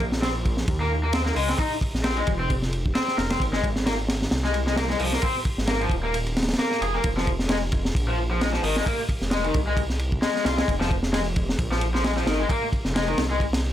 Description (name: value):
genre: breakbeat, breaks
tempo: 132 BPM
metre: 4/4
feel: swing 56% on 16ths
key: F minor pentatonic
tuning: A4 = 436 Hz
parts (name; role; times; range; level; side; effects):
- phased detuned saw bass; bass; 0.0-13.7 s; Eb1 to Eb2; -27 LUFS; equal; phaser
- crunchy breakbeat drum kit; drums; 0.0-13.6 s; hi-hat, kick drum, ride cymbal, snare drum; -25 LUFS; equal; none
- raw garage guitar; riff; 0.2-13.4 s; Eb3 to Bb4; -26 LUFS; left 2 dB; overdrive, tube saturation, digital delay
room: light reverb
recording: none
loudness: -22 LUFS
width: side -12 dB against mid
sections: 0.0-13.7 A section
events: none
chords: 0.0 Bb5; 3.4 Ab; 7.0 Fm